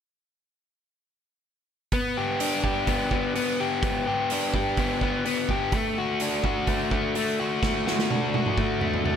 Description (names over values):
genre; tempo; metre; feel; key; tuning
indie rock; 126 BPM; 4/4; straight; unclear; A4 = 441 Hz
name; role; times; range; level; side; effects
overdriven electric guitar; riff; 1.9-9.2 s; A3 to G4; -24 LUFS; left 2 dB; wide subtle chorus
loose indie drum kit; drums; 1.9-9.2 s; hi-hat, kick drum, snare drum, toms; -28 LUFS; right 2 dB; none
room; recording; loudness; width
moderate lush hall reverb, RT60 1.8 s; bright 1980s-style digital production; -23 LUFS; side -8 dB against mid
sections
1.9-9.2 A section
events
drum fill 7.6-9.2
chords
1.9 G; 5.7 D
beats
| 1.92 2.40 2.87 3.35 | 3.83 4.30 4.78 5.25 | 5.73 6.21 6.68 7.16 | 7.63 8.11 8.58 9.05